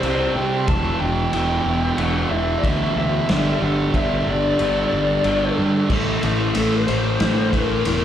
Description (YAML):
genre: quiet-loud alternative rock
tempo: 92 BPM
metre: 4/4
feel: straight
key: unclear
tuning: A4 = 440 Hz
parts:
  - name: lead guitar through a small cranked amp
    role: melody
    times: 0.0-8.0 s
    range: A4 to A5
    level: -24 LUFS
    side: left 3 dB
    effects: overdrive, tape echo
  - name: thick fuzz guitar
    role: riff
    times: 0.0-8.0 s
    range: E2 to C4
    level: -22 LUFS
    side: right 5 dB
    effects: distortion, slapback echo
  - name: fuzz fingered electric bass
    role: bass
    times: 0.0-8.0 s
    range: E1 to C3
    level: -24 LUFS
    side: equal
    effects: overdrive
  - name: raw garage drum kit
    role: drums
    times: 0.0-8.0 s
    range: crash cymbal, kick drum, ride cymbal, snare drum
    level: -24 LUFS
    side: left 1 dB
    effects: none
  - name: thick fuzz guitar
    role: riff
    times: 5.9-8.0 s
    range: A2 to A3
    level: -23 LUFS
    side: left 10 dB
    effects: distortion, slapback echo
room: light reverb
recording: live gig heard through the venue's PA, club reverb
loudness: -17 LUFS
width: side -10 dB against mid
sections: 0.0-5.9 A section; 5.9-8.0 B section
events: half time 0.0-5.9; lead electric guitar solo 5.9-8.0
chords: 0.0 C5; 0.7 Em; 3.3 G5; 5.9 A5